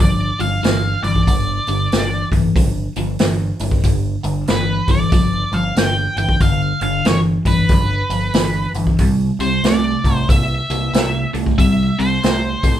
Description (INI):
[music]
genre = blues rock power trio and southern rock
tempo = 93 BPM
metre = 4/4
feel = swing 62% on 8ths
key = G mixolydian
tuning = A4 = 440 Hz
[part]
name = octave-fuzz lead guitar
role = melody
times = 0.0-12.8 s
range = B4 to G5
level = -22 LUFS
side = right 1 dB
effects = distortion
[part]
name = biting overdriven guitar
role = riff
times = 0.0-12.8 s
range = G2 to Bb3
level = -20 LUFS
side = equal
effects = phaser
[part]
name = overdriven picked electric bass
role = bass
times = 0.0-12.8 s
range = G1 to C2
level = -22 LUFS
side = equal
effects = none
[part]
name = vintage drum kit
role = drums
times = 0.0-12.7 s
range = hi-hat, kick drum, snare drum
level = -18 LUFS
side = equal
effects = none
[sound]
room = moderate studio reverb, RT60 0.5 s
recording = band playing live in one room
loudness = -14 LUFS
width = side -11 dB against mid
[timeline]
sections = 0.0-12.8 A section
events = none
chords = 0.0 G7(no3); 9.0 C7